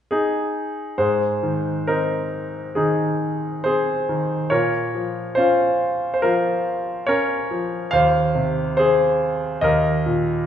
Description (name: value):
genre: classical, lyrical solo piano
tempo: 70 BPM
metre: 4/4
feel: rubato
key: Ab major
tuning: A4 = 440 Hz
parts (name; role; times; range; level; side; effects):
- clear concert grand piano; solo; 0.1-10.5 s; Eb2 to F5; -18 LUFS; equal; none
room: wet recital hall reverb, RT60 1.3 s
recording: recorded in a church or concert hall, nothing above 10.5 kHz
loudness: -18 LUFS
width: side -9 dB against mid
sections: 1.0-10.5 A section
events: none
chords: 0.0 N.C.; 1.0 Ab; 4.5 Bbm; 7.9 Ab/Eb; 9.6 Eb5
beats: 0.10 | 0.98 1.87 2.76 3.65 | 4.51 5.38 6.23 7.08 | 7.93 8.78 9.62